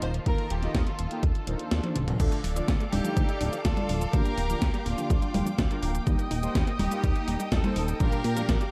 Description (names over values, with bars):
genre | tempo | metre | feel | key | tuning
italo disco | 124 BPM | 4/4 | straight | unclear | A4 = 440 Hz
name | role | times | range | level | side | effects
rich studio violin section | melody | 0.0-8.7 s | D4 to C5 | -37 LUFS | equal | delay
rich studio string section | sustained chords | 0.0-8.7 s | Eb3 to Eb6 | -39 LUFS | equal | none
analog synth brass | stabs | 0.0-8.6 s | Bb2 to Eb5 | -38 LUFS | equal | chorus
chorused synth bass | bass | 0.0-8.6 s | D1 to Bb2 | -32 LUFS | equal | tube saturation
gated 80s digital drum machine | drums | 0.0-8.7 s | cabasa, congas, crash cymbal, hi-hat, snare drum, toms | -34 LUFS | equal | gated reverb, gated reverb snare
electronic kick drum | drums | 0.3-8.6 s | none | -29 LUFS | equal | none
swell | sound effects | 1.4-2.2 s | none | -43 LUFS | equal | none
unison pluck | arpeggios | 2.2-8.7 s | F3 to Eb4 | -41 LUFS | equal | none
room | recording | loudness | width
little or no reverb | dark, warm production | -27 LUFS | mono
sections
0.0-2.2 A section; 2.2-8.7 B section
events
swell 1.4-2.2; kick drops out 1.7-2.2; drum fill 1.8-2.2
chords
0.0 Ebsus2; 2.2 Dm; 4.1 Gm7/D; 6.1 Eb; 8.0 Bb6